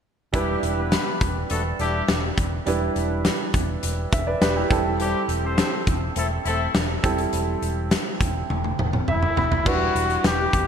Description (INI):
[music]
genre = 1980s-style pop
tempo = 103 BPM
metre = 4/4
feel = straight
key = unclear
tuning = A4 = 440 Hz
[part]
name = warm concert grand piano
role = accompaniment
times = 0.3-10.7 s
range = F#3 to B5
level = -27 LUFS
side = right 4 dB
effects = none
[part]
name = warm horn section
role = stabs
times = 0.3-6.7 s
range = G3 to C5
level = -28 LUFS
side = left 3 dB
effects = none
[part]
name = vintage muted fingered electric bass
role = bass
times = 0.3-10.7 s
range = E1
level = -27 LUFS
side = equal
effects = none
[part]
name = big rock drum kit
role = drums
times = 0.3-10.7 s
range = crash cymbal, hi-hat, kick drum, snare drum, toms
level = -24 LUFS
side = left 1 dB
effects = gated reverb
[part]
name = clear flugelhorn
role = melody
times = 9.1-10.7 s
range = E4 to G4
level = -22 LUFS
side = left 3 dB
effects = ping-pong delay
[sound]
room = moderate lush hall reverb, RT60 2.6 s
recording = bright 1980s-style digital production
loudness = -20 LUFS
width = side -7 dB against mid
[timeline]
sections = 0.3-9.7 A section; 9.7-10.7 B section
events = drum fill 8.5-9.7; grand piano fill 8.8-9.7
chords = 0.3 Em7; 4.7 Am7/E; 9.4 E5; 9.7 Em7